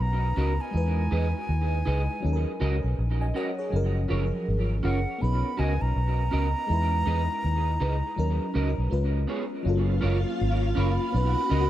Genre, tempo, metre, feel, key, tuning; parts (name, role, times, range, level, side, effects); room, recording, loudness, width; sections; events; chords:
reggae; 81 BPM; 4/4; swing 61% on 16ths; F# major; A4 = 441 Hz
breathy silver concert flute; melody; 0.0-11.7 s; F#5 to B5; -32 LUFS; right 2 dB; tape echo
FM electric piano with soft pad layer; accompaniment; 0.0-11.7 s; E#3 to G#5; -32 LUFS; left 1 dB; chorus, phaser, tape echo
vintage muted fingered electric bass; bass; 0.0-11.7 s; F#1 to E2; -25 LUFS; equal
electric guitar through a small old amp; stabs; 0.4-11.7 s; B3 to D#5; -33 LUFS; right 2 dB; analog chorus, tape echo
soft string machine; second line; 9.7-11.7 s; E#4 to F#5; -32 LUFS; equal; ensemble chorus
light reverb; dark, warm production, faint mains hum; -24 LUFS; side -13 dB against mid
0.0-9.7 A section; 9.7-11.7 B section
0.0 Bmaj9; 0.7 Emaj7; 2.2 D#m7; 3.7 F#maj7; 5.2 Bmaj9; 6.7 Emaj7; 8.2 D#m7; 8.9 C#7; 9.7 F#maj7; 11.1 Bmaj9